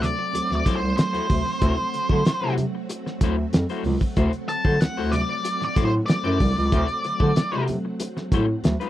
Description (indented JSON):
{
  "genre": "funk",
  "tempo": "94 BPM",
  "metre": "4/4",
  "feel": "straight",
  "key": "D mixolydian",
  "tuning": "A4 = 440 Hz",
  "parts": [
    { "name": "octave-fuzz lead guitar", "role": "melody", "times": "0.0-7.6 s", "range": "C5 to A5", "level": "-26 LUFS", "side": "equal", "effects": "distortion" },
    { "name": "electric guitar at the edge of break-up", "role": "accompaniment", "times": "0.0-8.9 s", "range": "A3 to C5", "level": "-30 LUFS", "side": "left 8 dB", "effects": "analog chorus" },
    { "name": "string machine, violins", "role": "sustained chords", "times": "0.0-8.9 s", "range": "F#3 to F#4", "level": "-32 LUFS", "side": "equal", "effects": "ensemble chorus" },
    { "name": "dark bass clarinet", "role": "bass", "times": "0.0-8.8 s", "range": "C2 to D3", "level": "-23 LUFS", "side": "equal", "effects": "none" },
    { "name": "cloth-damped thuddy drum kit", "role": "drums", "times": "0.0-8.9 s", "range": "hi-hat, kick drum, snare drum", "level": "-22 LUFS", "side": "equal", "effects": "none" },
    { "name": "congas", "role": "percussion", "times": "0.0-8.8 s", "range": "none", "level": "-31 LUFS", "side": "right 4 dB", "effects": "none" }
  ],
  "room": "little or no reverb",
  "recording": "dry, close 1970s-style studio recording",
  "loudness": "-20 LUFS",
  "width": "side -13 dB against mid",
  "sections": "0.0-8.9 A section",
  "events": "lead electric guitar solo 0.0-8.9",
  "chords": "0.0 D9"
}